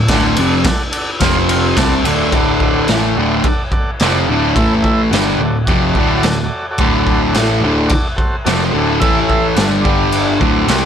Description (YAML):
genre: garage rock duo or trio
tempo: 107 BPM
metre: 4/4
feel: straight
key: D mixolydian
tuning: A4 = 443 Hz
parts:
  - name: fuzz guitar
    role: riff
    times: 0.0-10.9 s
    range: D2 to C4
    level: -14 LUFS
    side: equal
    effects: distortion
  - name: vintage muted picked electric bass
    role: bass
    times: 0.0-10.9 s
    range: D1 to C2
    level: -21 LUFS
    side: equal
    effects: none
  - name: combo organ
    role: sustained chords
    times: 0.1-10.9 s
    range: D4 to C6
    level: -22 LUFS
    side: right 2 dB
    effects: none
  - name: raw garage drum kit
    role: drums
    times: 0.1-10.8 s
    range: crash cymbal, kick drum, ride cymbal, snare drum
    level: -17 LUFS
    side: equal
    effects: none
room: light reverb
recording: none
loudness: -12 LUFS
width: side -8 dB against mid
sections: 0.0-2.3 A section; 2.3-10.9 B section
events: transistor combo organ fill 1.2-2.3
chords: 0.0 D; 1.2 F5; 1.8 D; 4.6 A5; 5.1 D; 9.0 A5; 9.6 D; 9.9 G5